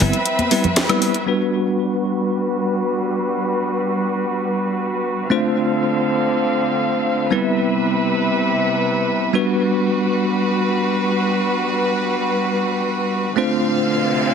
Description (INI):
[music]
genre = nu-disco, nu disco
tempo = free time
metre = none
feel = none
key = G major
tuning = A4 = 437 Hz
[part]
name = bell-like tine electric piano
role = accompaniment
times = 0.0-14.3 s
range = G3 to C5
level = -20 LUFS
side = equal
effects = fast stereo tremolo, low-pass filter, ping-pong delay
[part]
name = clear chamber string section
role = sustained chords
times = 0.0-14.3 s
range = C3 to F5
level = -21 LUFS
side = equal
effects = low-pass filter
[part]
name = house drum kit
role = drums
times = 0.0-1.2 s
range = hi-hat, snare drum, woodblock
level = -22 LUFS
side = left 1 dB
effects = none
[part]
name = congas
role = percussion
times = 0.4-0.7 s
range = none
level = -25 LUFS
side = left 1 dB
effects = none
[part]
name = riser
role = sound effects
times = 13.7-14.3 s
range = none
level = -27 LUFS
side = right 1 dB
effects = none
[sound]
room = moderate digital room reverb, RT60 1.4 s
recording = heavily compressed radio sound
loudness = -17 LUFS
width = side -6 dB against mid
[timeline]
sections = 0.0-1.3 A section; 1.3-14.3 B section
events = band accent 0.8; filter sweep on string section 1.3-14.3; riser 13.7-14.3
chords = 0.0 Cmaj7; 1.3 Gmaj7; 5.3 Dm7; 7.3 Cmaj7; 9.3 Gmaj7; 13.4 Dm7